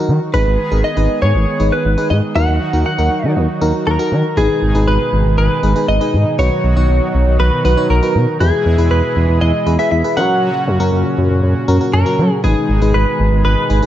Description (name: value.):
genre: synth-pop.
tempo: 119 BPM.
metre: 4/4.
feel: straight.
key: G# minor.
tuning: A4 = 440 Hz.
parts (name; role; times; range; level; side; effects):
FM electric piano; accompaniment; 0.0-13.9 s; C#4 to C#5; -21 LUFS; left 2 dB; chorus.
brassy analog pad; sustained chords; 0.0-13.9 s; A#2 to G#4; -21 LUFS; right 1 dB; chorus, tremolo.
smooth gliding synth bass; bass; 0.1-13.8 s; G#1 to F#3; -14 LUFS; equal; none.
direct-recorded clean electric guitar; melody; 0.3-13.9 s; G#4 to F#5; -18 LUFS; right 1 dB; analog chorus, slapback echo.
room: light reverb.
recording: dark, warm production.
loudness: -12 LUFS.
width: side -12 dB against mid.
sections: 0.0-4.4 A section; 4.4-13.9 B section.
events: none.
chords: 0.3 G#m; 2.4 D#m; 4.4 G#m; 6.4 B; 8.4 E; 10.2 F#; 12.4 G#m.